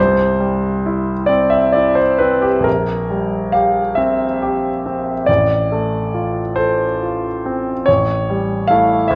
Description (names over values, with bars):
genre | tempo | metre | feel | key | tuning
classical, romantic nocturne for solo piano | 43-51 BPM (dotted quarters) | 12/8 | rubato | C major | A4 = 440 Hz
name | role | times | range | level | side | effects
clear concert grand piano | solo | 0.0-9.2 s | A1 to F5 | -17 LUFS | equal | none
room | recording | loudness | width
moderate recital hall reverb, RT60 1.4 s | worn, warbling old tape, cassette tape, warbly pitch drift | -17 LUFS | mono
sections
0.0-9.2 A section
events
none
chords
0.0 C; 2.7 C7/Bb; 5.3 F/A; 7.9 A7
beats
1.30 | 2.66 3.97 5.28 6.58 | 7.88 9.11